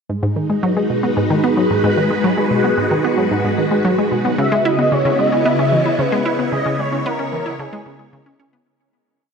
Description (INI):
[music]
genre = ambient, sequencer-driven space music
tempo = 112 BPM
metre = 4/4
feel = straight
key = G# minor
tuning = A4 = 440 Hz
[part]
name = phased string machine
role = sustained chords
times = 0.1-8.7 s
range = C#3 to C#5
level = -18 LUFS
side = equal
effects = ensemble chorus, phaser
[part]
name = resonant blip pluck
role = riff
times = 0.1-8.6 s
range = G#2 to E4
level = -19 LUFS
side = equal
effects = chorus, tape echo
[part]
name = expressive synth lead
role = melody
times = 4.4-8.4 s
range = G#4 to E5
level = -19 LUFS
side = equal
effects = ensemble chorus, tape echo
[sound]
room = wet huge ambient reverb, RT60 8.3 s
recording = none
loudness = -15 LUFS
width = side -6 dB against mid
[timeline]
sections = 0.1-8.7 A section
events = fade-out 5.8-8.7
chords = 0.1 G#m7; 4.4 C#m7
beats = | 0.10 0.63 1.17 1.70 | 2.24 2.77 3.31 3.85 | 4.38 4.92 5.45 5.99 | 6.52 7.06 7.59 8.13